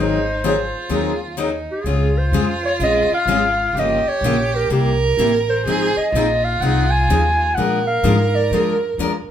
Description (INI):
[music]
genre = acoustic string swing (jazz manouche)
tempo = 126 BPM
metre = 4/4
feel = swing 63% on 8ths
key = Db major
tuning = A4 = 441 Hz
[part]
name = mellow clarinet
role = melody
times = 0.0-9.0 s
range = G4 to Ab5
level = -20 LUFS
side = equal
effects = none
[part]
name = warm violin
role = second line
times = 0.0-9.3 s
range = D#4 to Bb4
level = -23 LUFS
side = right 4 dB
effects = none
[part]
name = picked steel-string acoustic guitar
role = accompaniment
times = 0.0-9.1 s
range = C3 to Bb4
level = -21 LUFS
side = left 3 dB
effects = none
[part]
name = upright bass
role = bass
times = 0.0-9.3 s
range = G1 to Bb2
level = -22 LUFS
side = equal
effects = none
[sound]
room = wet studio reverb, RT60 0.7 s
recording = band playing live in one room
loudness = -16 LUFS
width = side -10 dB against mid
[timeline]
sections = 0.0-1.9 A section; 1.9-9.3 B section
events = none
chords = 0.0 G#7; 1.9 Dbmaj7; 3.8 Gm7b5; 4.7 C7; 5.7 Fm7; 7.6 Bb7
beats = 0.43 0.90 1.38 | 1.85 2.33 2.80 3.28 | 3.75 4.23 4.71 5.18 | 5.66 6.13 6.61 7.08 | 7.56 8.03 8.51 8.98